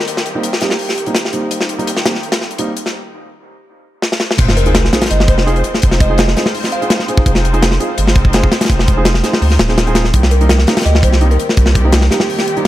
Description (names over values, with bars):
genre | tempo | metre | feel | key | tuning
drum and bass, jungle | 167 BPM | 4/4 | straight | F minor | A4 = 439 Hz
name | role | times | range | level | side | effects
buzzing kalimba | melody | 0.0-1.4, 4.6-7.1, 10.3-12.7 s | G4 to F5 | -22 LUFS | equal | vintage 12-bit sampler grit, dub echo
dark studio string section | sustained chords | 0.0-12.7 s | Eb3 to C5 | -22 LUFS | left 2 dB | none
tight metal drum kit | drums | 0.0-12.7 s | crash cymbal, hi-hat, kick drum, snare drum | -14 LUFS | equal | high-pass filter on kick, high-pass filter on hats, high-pass filter on cymbals, high-pass filter on snare, high-pass filter on room
dark concert grand piano | stabs | 0.4-12.6 s | G3 to Ab4 | -21 LUFS | right 2 dB | dub echo
saturated sub bass | bass | 4.4-12.1 s | Eb1 to D2 | -13 LUFS | equal | none
sub drop | sound effects | 4.4-5.8 s | none | -22 LUFS | equal | none
room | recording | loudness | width
light reverb, small room ambience | none | -11 LUFS | side -14 dB against mid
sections
0.0-4.4 A section; 4.4-12.7 B section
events
filter sweep on grand piano 0.0-4.4; break 3.0-4.4; drum fill 4.0-4.4; drop 4.4-12.7; impact 4.4-5.8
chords
0.0 Cm7; 4.4 Fm7; 10.1 Cm7